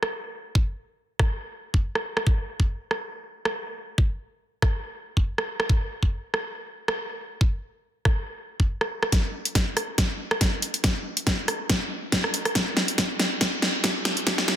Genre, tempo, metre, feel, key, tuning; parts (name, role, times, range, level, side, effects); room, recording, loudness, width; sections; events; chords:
dubstep; 140 BPM; 4/4; swing 54% on 16ths, half-time
dubstep drum kit; drums; 0.0-14.6 s; hi-hat, rim click, snare drum; -25 LUFS; equal; soft clipping on snare, low-pass filter on snare, low-pass filter on hats
electronic kick drum; drums; 0.6-14.4 s; -23 LUFS; equal
moderate plate reverb, RT60 1.4 s, digital ambience; dense, heavily limited modern master, high-pass filter; -23 LUFS; side -11 dB against mid
0.0-9.1 A section; 9.1-14.6 B section
build-up 9.1-14.6; drum fill 9.1-14.6; filter sweep 9.1-14.6